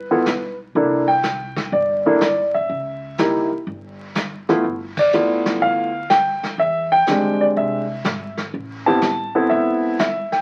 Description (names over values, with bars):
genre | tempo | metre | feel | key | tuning
jazz piano trio | 123 BPM | 4/4 | swing 68% on 8ths | G mixolydian | A4 = 440 Hz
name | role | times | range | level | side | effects
warm concert grand piano | melody | 0.0-10.4 s | G#3 to A5 | -20 LUFS | equal | none
upright bass | bass | 0.0-10.4 s | E1 to E2 | -37 LUFS | equal | none
vintage brush drum kit | drums | 0.3-10.4 s | brushed snare drum, hi-hat, kick drum, ride cymbal, snare drum | -28 LUFS | equal | none
room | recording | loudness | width
moderate studio reverb, RT60 0.6 s | very old 78 rpm record, vinyl crackle | -20 LUFS | mono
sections
0.0-10.4 A section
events
band accent 4.9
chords
0.0 G; 0.8 C13; 2.7 C#dim; 4.6 G13; 6.6 E7alt; 8.5 Am